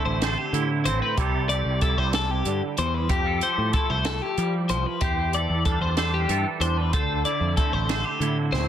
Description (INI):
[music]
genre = math rock and midwest emo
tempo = 62 BPM (dotted quarters)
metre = 6/8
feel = straight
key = C major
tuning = A4 = 438 Hz
[part]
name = twangy electric guitar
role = accompaniment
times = 0.0-8.7 s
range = A2 to C5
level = -29 LUFS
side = right 9 dB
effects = ensemble chorus, plate reverb
[part]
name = twelve-string electric guitar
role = arpeggios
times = 0.0-8.7 s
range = G4 to D5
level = -26 LUFS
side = left 7 dB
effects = spring reverb, plate reverb
[part]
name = growling picked electric bass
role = bass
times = 0.1-8.7 s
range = A1 to F3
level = -26 LUFS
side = equal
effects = overdrive
[part]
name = compact cocktail drum kit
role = drums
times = 0.2-8.7 s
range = hi-hat, kick drum, snare drum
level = -28 LUFS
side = right 1 dB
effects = none
[sound]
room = light reverb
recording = dense, heavily limited modern master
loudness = -22 LUFS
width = side -10 dB against mid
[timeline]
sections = 0.0-8.7 A section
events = drum fill 8.5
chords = 0.0 D7sus2; 1.2 C69; 3.1 Fmaj9; 5.0 C69/E; 6.9 D7sus2